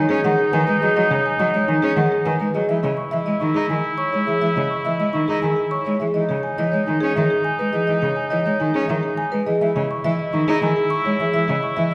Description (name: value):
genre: classical, minimalist pattern music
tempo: 104 BPM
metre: 3/4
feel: straight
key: C# minor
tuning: A4 = 439 Hz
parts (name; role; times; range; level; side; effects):
- marimba with medium mallets; melody; 0.0-11.9 s; G#4 to C#6; -26 LUFS; equal; none
- clear oboe; second line; 0.0-11.9 s; D#4 to E4; -27 LUFS; equal; none
- clear cello; accompaniment; 0.0-11.9 s; C#3 to D#4; -25 LUFS; equal; none
- vibraphone with soft mallets; arpeggios; 0.0-11.9 s; D#4 to D#5; -26 LUFS; equal; none
room: wet scoring stage reverb, RT60 1.7 s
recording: heard from further back in the room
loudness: -20 LUFS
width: mono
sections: 0.0-11.9 A section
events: none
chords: 0.0 Badd9; 2.7 C#m